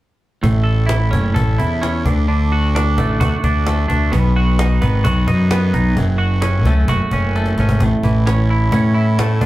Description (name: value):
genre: quiet-loud alternative rock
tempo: 130 BPM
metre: 4/4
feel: straight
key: A major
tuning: A4 = 439 Hz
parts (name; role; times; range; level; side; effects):
- twelve-string electric guitar; arpeggios; 0.4-9.5 s; F#2 to A4; -20 LUFS; right 2 dB; none
- fuzz fingered electric bass; bass; 0.4-9.5 s; F#1 to A2; -16 LUFS; equal; overdrive
- cajon; drums; 0.4-9.5 s; none; -21 LUFS; equal; none
room: moderate studio reverb, RT60 0.8 s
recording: band playing live in one room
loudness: -14 LUFS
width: side -16 dB against mid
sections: 0.4-7.8 A section; 7.8-9.5 B section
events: drum fill 7.4-7.8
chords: 0.4 A; 2.1 D; 4.1 B; 6.0 F#m; 7.8 A